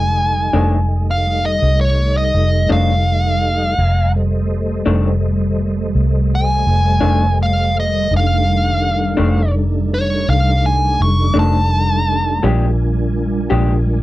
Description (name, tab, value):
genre	slow blues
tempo	56 BPM (dotted quarters)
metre	12/8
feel	straight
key	unclear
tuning	A4 = 440 Hz
part	dark smooth lead guitar	melody	0.0-12.4 s	Db5 to Db6	-18 LUFS	equal	overdrive
part	granular cloud pad	sustained chords	0.0-14.0 s	C3 to A3	-26 LUFS	right 1 dB	built-in reverb
part	mellow tonewheel organ	sustained chords	0.0-14.0 s	G3 to Bb5	-24 LUFS	right 1 dB	slow rotary speaker, chorus vibrato
part	vintage muted fingered electric bass	bass	0.0-14.0 s	F1 to C2	-16 LUFS	equal	none
part	electric guitar through a small old amp	accompaniment	0.5-13.7 s	F2 to G4	-18 LUFS	left 3 dB	tremolo
room	little or no reverb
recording	dry, close 1970s-style studio recording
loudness	-13 LUFS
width	side -16 dB against mid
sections	0.0-14.0 A section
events	lead electric guitar solo 0.0-14.0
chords	0.0 F13; 12.4 Bb13